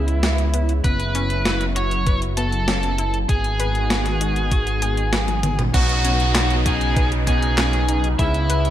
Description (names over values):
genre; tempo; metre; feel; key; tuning
synthwave; 98 BPM; 4/4; straight; unclear; A4 = 438 Hz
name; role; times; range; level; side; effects
biting lead guitar; melody; 0.0-8.7 s; E4 to C#5; -25 LUFS; equal; overdrive, tape echo
lush unison pad; sustained chords; 0.0-8.7 s; C#3 to F#4; -28 LUFS; equal; chorus, sidechain pumping
analog pluck; arpeggios; 0.0-8.7 s; B3 to B4; -31 LUFS; left 3 dB; chorus, ping-pong delay
chorused synth bass; bass; 0.0-8.7 s; F#1 to C#2; -22 LUFS; equal; none
gated 80s digital drum machine; drums; 0.1-8.7 s; crash cymbal, handclaps, hi-hat, snare drum, toms; -24 LUFS; equal; gated reverb, gated reverb snare
electronic kick drum; drums; 0.8-8.3 s; none; -20 LUFS; equal; none
FM electric piano with soft pad layer; second line; 5.7-8.7 s; E5 to G#5; -31 LUFS; equal; none
analog synth brass; stabs; 5.7-8.7 s; B2 to E4; -26 LUFS; right 2 dB; chorus
downlifter; sound effects; 5.7-8.7 s; none; -28 LUFS; equal; none
room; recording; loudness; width
light reverb; none; -17 LUFS; side -12 dB against mid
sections
0.0-5.7 A section; 5.7-8.7 B section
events
drum fill 5.1-5.7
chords
0.0 C#m7; 0.8 F#7sus4; 3.3 G#m7; 5.7 Badd9; 8.2 C#m7